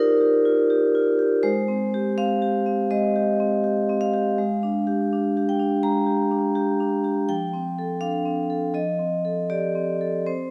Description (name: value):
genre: classical, contemporary piece for solo vibraphone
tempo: 82 BPM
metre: 4/4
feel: rubato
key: unclear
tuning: A4 = 440 Hz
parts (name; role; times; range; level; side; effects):
- vibraphone with medium hard mallets; solo; 0.0-10.5 s; F3 to Bb5; -23 LUFS; equal; none
room: moderate recital hall reverb, RT60 1.7 s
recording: none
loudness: -23 LUFS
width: mono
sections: 0.0-10.5 A section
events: none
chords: 0.0 Ebadd9; 1.5 Abmaj7; 4.4 Fm69/Ab; 7.3 F69; 8.8 F9